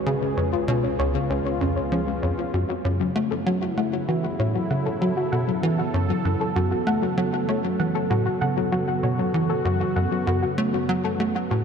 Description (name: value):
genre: ambient, sequencer-driven space music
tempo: 97 BPM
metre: 4/4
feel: straight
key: F# minor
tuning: A4 = 440 Hz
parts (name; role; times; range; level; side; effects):
- sweeping resonant pad; sustained chords; 0.0-11.6 s; C#3 to B4; -27 LUFS; right 1 dB; chorus
- soft round pluck; arpeggios; 0.0-11.6 s; C#3 to F#5; -27 LUFS; left 2 dB; chorus, auto-pan, cassette tape, ping-pong delay
- analog drone; bass; 0.0-11.6 s; C#2 to F#2; -40 LUFS; equal; none
- bubbling stepped-filter texture; texture; 0.0-2.6 s; G#4; -37 LUFS; equal; chorus, built-in reverb
- tight sequencer bass; riff; 0.1-11.6 s; C#2 to A3; -25 LUFS; equal; lush chorus, ping-pong delay
room: wet huge ambient reverb, RT60 7.7 s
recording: dark, warm production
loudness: -21 LUFS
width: side -6 dB against mid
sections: 0.0-2.5 A section; 2.5-11.6 B section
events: none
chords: 0.1 C#7; 2.5 F#m